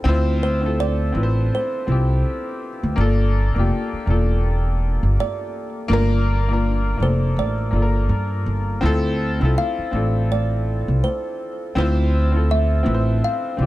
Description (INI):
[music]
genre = lo-fi hip hop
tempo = 82 BPM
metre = 4/4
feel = swing 61% on 16ths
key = D minor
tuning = A4 = 436 Hz
[part]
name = bright upright piano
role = accompaniment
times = 0.0-13.7 s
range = Bb3 to C5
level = -24 LUFS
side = left 2 dB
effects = none
[part]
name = upright bass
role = bass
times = 0.1-13.7 s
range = E1 to G2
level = -19 LUFS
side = equal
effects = none
[part]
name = kalimba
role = melody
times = 0.4-13.7 s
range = Bb4 to F5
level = -27 LUFS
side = right 2 dB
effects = none
[sound]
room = studio ambience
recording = dark, warm production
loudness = -18 LUFS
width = side -16 dB against mid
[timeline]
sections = 0.0-13.7 A section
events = none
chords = 0.0 Dm7; 3.0 Gm7; 8.8 Dm7